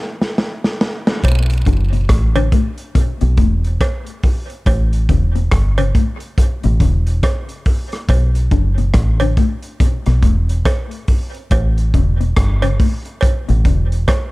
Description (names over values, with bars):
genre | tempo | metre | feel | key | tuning
dub reggae | 70 BPM | 4/4 | swing 61% on 16ths | B minor | A4 = 440 Hz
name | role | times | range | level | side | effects
crunchy breakbeat drum kit | drums | 0.2-14.3 s | hi-hat, kick drum, rim click, snare drum | -16 LUFS | equal | none
deep dub fingered electric bass | bass | 1.2-14.1 s | E1 to B1 | -14 LUFS | equal | none
cowbell and jawbone-type rattle | percussion | 1.2-14.3 s | none | -25 LUFS | right 4 dB | dub echo
mellow electric guitar | arpeggios | 1.7-13.8 s | A2 to D3 | -23 LUFS | left 7 dB | dub echo
room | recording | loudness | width
small room ambience | dark, warm production | -14 LUFS | side -21 dB against mid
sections
0.0-1.2 A section; 1.2-14.3 B section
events
break 0.0-1.2; drum fill 0.0-1.2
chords
0.0 N.C.; 1.2 B5; 4.7 A; 8.1 B5; 11.5 A